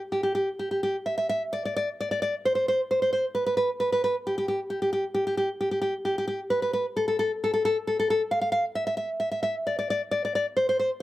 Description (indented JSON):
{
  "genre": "romantic piece for solo classical guitar",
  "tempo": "67 BPM",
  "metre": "4/4",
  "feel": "rubato",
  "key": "unclear",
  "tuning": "A4 = 439 Hz",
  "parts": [
    { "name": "nylon-string guitar", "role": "solo", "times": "0.1-10.9 s", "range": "G4 to F5", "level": "-24 LUFS", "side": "equal", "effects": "none" }
  ],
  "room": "light reverb",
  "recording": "none",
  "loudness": "-24 LUFS",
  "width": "side -15 dB against mid",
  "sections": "0.0-11.0 A section",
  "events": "none",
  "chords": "none",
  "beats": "0.50 1.43 2.35 | 3.25 4.14 5.03 5.93 | 6.85 7.76 8.65 9.55 | 10.45"
}